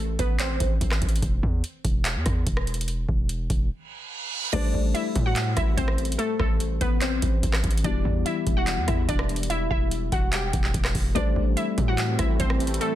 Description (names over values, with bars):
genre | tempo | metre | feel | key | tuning
hip hop, trap | 145 BPM | 4/4 | half-time | unclear | A4 = 440 Hz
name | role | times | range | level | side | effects
hard-hitting 808-style bass | bass | 0.0-12.8 s | E1 to A2 | -27 LUFS | equal | none
glassy wavetable pluck | melody | 0.2-1.2, 4.5-12.9 s | A3 to G5 | -29 LUFS | equal | chorus, low-pass filter, digital delay
booming analog drum machine | drums | 0.2-12.9 s | crash cymbal, handclaps, hi-hat, kick drum, rim click | -25 LUFS | equal | none
reverse cymbal | sound effects | 3.9-4.5 s | none | -30 LUFS | right 7 dB | none
felt-muted upright piano | accompaniment | 4.5-12.9 s | E3 to C5 | -32 LUFS | left 8 dB | low-pass filter
sweeping resonant pad | sustained chords | 11.2-12.9 s | E3 to C4 | -31 LUFS | right 1 dB | chorus
room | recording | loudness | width
little or no reverb | dense, heavily limited modern master | -22 LUFS | side -12 dB against mid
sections
0.0-4.5 A section; 4.5-12.9 B section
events
break 1.2-4.5; reverse cymbal 3.9-4.5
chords
0.0 Am; 1.2 N.C.; 4.5 Am7; 7.8 Em; 11.2 Am7